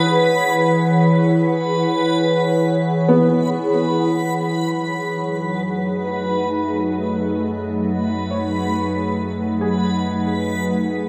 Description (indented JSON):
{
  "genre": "ambient",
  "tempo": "free time",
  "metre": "none",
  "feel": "none",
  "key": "F# dorian",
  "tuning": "A4 = 440 Hz",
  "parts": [
    { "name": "glassy FM pad", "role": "sustained chords", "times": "0.0-11.1 s", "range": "E3 to F#5", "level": "-21 LUFS", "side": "equal", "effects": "ensemble chorus, built-in reverb, phaser" },
    { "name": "felt-muted upright piano", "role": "arpeggios", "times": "0.0-11.1 s", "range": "B3 to B5", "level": "-26 LUFS", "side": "equal", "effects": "delay" },
    { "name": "backwards swelling texture", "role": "texture", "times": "0.0-11.1 s", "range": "B4 to B5", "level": "-25 LUFS", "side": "equal", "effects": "built-in reverb" },
    { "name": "round analog bass", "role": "bass", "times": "4.4-11.1 s", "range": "F#2", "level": "-36 LUFS", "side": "equal", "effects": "none" }
  ],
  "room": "wet lush hall reverb, RT60 2.8 s",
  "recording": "none",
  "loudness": "-19 LUFS",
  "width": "mono",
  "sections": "0.0-4.4 A section; 4.4-11.1 B section",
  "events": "fade-in on felt piano 4.4-11.1; fade-in on analog synth bass 4.4-11.1",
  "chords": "0.0 E69; 4.4 F#m69"
}